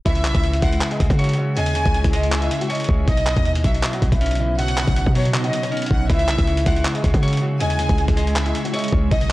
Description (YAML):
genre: hip hop, trap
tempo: 159 BPM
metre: 4/4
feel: half-time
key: C# minor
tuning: A4 = 444 Hz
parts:
  - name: fingerpicked swing-style acoustic guitar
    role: melody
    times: 0.0-9.3 s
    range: E3 to D#5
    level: -27 LUFS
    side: equal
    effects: none
  - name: clean electric guitar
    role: accompaniment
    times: 0.0-9.3 s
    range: B2 to C#5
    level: -26 LUFS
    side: equal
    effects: none
  - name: warm studio violin section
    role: second line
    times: 0.1-9.3 s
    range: C#5 to G#5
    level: -27 LUFS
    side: equal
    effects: tape echo
  - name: granular cloud pad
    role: sustained chords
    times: 1.5-9.3 s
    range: C#3 to E4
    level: -30 LUFS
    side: equal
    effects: built-in reverb
  - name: hard-hitting 808-style bass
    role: bass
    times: 0.1-9.3 s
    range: B1 to C#3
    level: -21 LUFS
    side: equal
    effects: none
  - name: dusty soul sampler-style drum kit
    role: drums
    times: 0.1-9.3 s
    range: handclaps, hi-hat, kick drum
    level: -21 LUFS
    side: equal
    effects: none
room: digital ambience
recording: dry, gritty hardware recording, cassette tape, tape stop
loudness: -17 LUFS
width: side -17 dB against mid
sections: 0.1-9.3 A section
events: none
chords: 0.1 C#m; 3.1 Badd9; 6.1 C#m